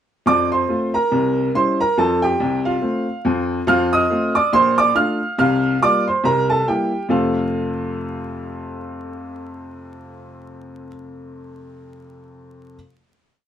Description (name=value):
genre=jazz, stride piano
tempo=140 BPM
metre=4/4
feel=swing 58% on 8ths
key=F major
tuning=A4 = 445 Hz
part: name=clear upright piano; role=solo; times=0.3-12.8 s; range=Bb1 to F6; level=-18 LUFS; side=right 1 dB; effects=none
room=light reverb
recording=close, detailed microphones, vinyl crackle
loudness=-16 LUFS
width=side -9 dB against mid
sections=0.2-7.1 A section; 7.1-10.5 final chord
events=none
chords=0.2 F; 1.1 C7b9; 2.0 F; 3.7 F7; 4.5 Bbmaj7; 5.4 C7sus4; 6.2 C7; 7.1 F